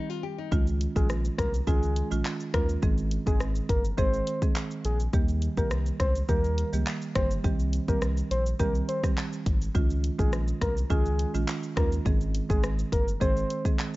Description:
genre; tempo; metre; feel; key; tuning
dancehall; 104 BPM; 4/4; straight; Ab major; A4 = 445 Hz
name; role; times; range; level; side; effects
nylon-string guitar; arpeggios; 0.0-0.7 s; Eb4 to G4; -36 LUFS; left 12 dB; none
buzzing marimba with medium hard mallets; accompaniment; 0.5-13.8 s; Eb3 to Ab4; -32 LUFS; right 4 dB; none
round analog bass; bass; 0.5-13.4 s; G1 to Eb2; -28 LUFS; equal; none
pop drum kit; drums; 0.5-14.0 s; handclaps, hi-hat, kick drum, rim click, shaker; -27 LUFS; equal; vintage 12-bit sampler grit
soft octave-layered synth lead; melody; 1.0-13.6 s; Ab4 to C5; -32 LUFS; left 1 dB; chorus, slapback echo
room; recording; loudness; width
digital ambience; dark, warm production, nothing above 7.6 kHz; -24 LUFS; side -19 dB against mid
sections
0.5-14.0 A section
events
break 0.0-0.5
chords
0.0 Cm (rootless); 0.5 Dbadd9; 2.8 Ab; 5.1 Eb; 7.4 Cm; 9.8 Dbadd9; 12.1 Ab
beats
| 0.52 1.10 1.67 2.25 | 2.83 3.40 3.98 4.56 | 5.13 5.71 6.29 6.87 | 7.44 8.02 8.60 9.17 | 9.75 10.33 10.90 11.48 | 12.06 12.63 13.21 13.79

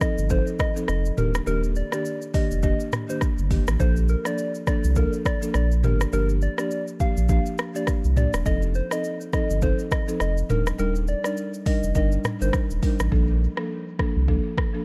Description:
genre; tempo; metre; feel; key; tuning
afrobeats; 103 BPM; 4/4; swing 58% on 16ths; Bb major; A4 = 437 Hz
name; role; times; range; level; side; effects
soft struck synth lead; melody; 0.0-12.5 s; Bb4 to F5; -33 LUFS; equal; chorus, dub echo
buzzing marimba with soft mallets; accompaniment; 0.0-14.8 s; Eb3 to Bb4; -31 LUFS; equal; dub echo
afro-pop drum kit; drums; 0.0-14.7 s; hi-hat, kick drum, rim click, shaker, toms; -27 LUFS; equal; none
saturated sub bass; bass; 0.2-14.4 s; Eb1 to C2; -25 LUFS; equal; none
room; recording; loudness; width
digital ambience; echo-heavy mix; -24 LUFS; mono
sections
0.0-13.1 A section; 13.1-14.8 B section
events
hi-hats muted 13.1-14.8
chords
0.0 F7; 1.2 Ebmaj7; 3.8 Bbmaj7; 5.8 Gm7; 8.5 F7; 10.5 Ebmaj7; 13.1 Bbmaj7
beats
0.30 0.89 | 1.47 2.05 2.63 3.21 | 3.80 4.38 4.96 5.54 | 6.13 6.71 7.29 7.88 | 8.46 9.04 9.62 10.21 | 10.79 11.37 11.95 12.54 | 13.12 13.70 14.28

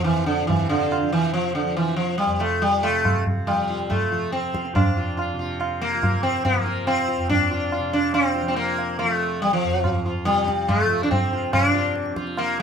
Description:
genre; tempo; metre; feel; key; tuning
indian classical, Hindustani; 141 BPM; 4/4; straight; F raga bilaval; A4 = 439 Hz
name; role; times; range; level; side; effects
sitar; melody; 0.0-12.6 s; D3 to F4; -21 LUFS; equal; none
tanpura; drone; 0.0-12.6 s; F2 to F3; -30 LUFS; equal; none
tabla; percussion; 0.1-12.5 s; none; -26 LUFS; right 1 dB; none
room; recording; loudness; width
light reverb; minimal, uncompressed stereo recording; -20 LUFS; side -7 dB against mid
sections
0.0-11.5 A section; 11.5-12.6 B section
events
none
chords
none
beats
0.06 0.48 0.91 | 1.34 1.77 2.19 2.62 | 3.05 3.48 3.90 4.33 | 4.75 5.18 5.61 6.03 | 6.46 6.88 7.30 7.73 | 8.15 8.58 9.00 9.42 | 9.84 10.27 10.69 11.11 | 11.53 11.95 12.37

